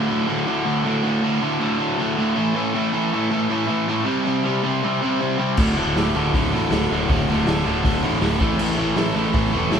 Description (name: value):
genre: garage rock duo or trio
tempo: 159 BPM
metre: 4/4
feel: straight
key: unclear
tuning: A4 = 440 Hz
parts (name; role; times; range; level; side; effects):
- crunchy overdriven guitar; riff; 0.0-9.8 s; D2 to C4; -19 LUFS; equal; none
- fuzz picked electric bass; bass; 5.6-9.8 s; D1 to A1; -27 LUFS; equal; overdrive
- raw garage drum kit; drums; 5.6-9.8 s; crash cymbal, hi-hat, kick drum, snare drum; -23 LUFS; equal; none
room: moderate large studio reverb, RT60 0.8 s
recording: band playing live in one room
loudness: -18 LUFS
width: side -7 dB against mid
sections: 0.0-9.8 A section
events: none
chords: 0.0 D5; 2.4 A5; 4.1 C5; 5.6 D5; 8.4 A5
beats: 0.29 0.67 | 1.05 1.43 1.81 2.18 | 2.56 2.94 3.32 3.69 | 4.07 4.45 4.83 5.20 | 5.58 5.96 6.33 6.71 | 7.09 7.46 7.84 8.22 | 8.60 8.97 9.35 9.72